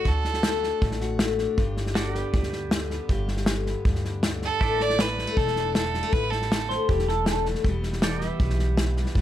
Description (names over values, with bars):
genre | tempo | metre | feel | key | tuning
honky-tonk and classic country | 158 BPM | 4/4 | straight | unclear | A4 = 440 Hz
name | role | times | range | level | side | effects
clear fiddle | melody | 0.0-0.8, 4.5-6.7 s | A4 to D5 | -28 LUFS | right 6 dB | none
picked steel-string acoustic guitar | accompaniment | 0.0-9.2 s | E2 to G4 | -29 LUFS | left 6 dB | none
pedal steel guitar | sustained chords | 0.0-9.2 s | E4 to E5 | -36 LUFS | right 7 dB | none
natural country drum kit | drums | 0.0-9.2 s | hi-hat, kick drum, snare drum | -26 LUFS | equal | none
upright bass | bass | 0.1-9.2 s | E1 to D2 | -29 LUFS | equal | none
electric guitar through a small old amp | second line | 6.7-7.5 s | G4 to C5 | -28 LUFS | right 4 dB | analog delay
room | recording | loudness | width
little or no reverb | none | -22 LUFS | side -12 dB against mid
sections
0.0-9.2 A section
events
none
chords
0.0 D; 1.6 G; 4.6 Asus4; 7.6 Em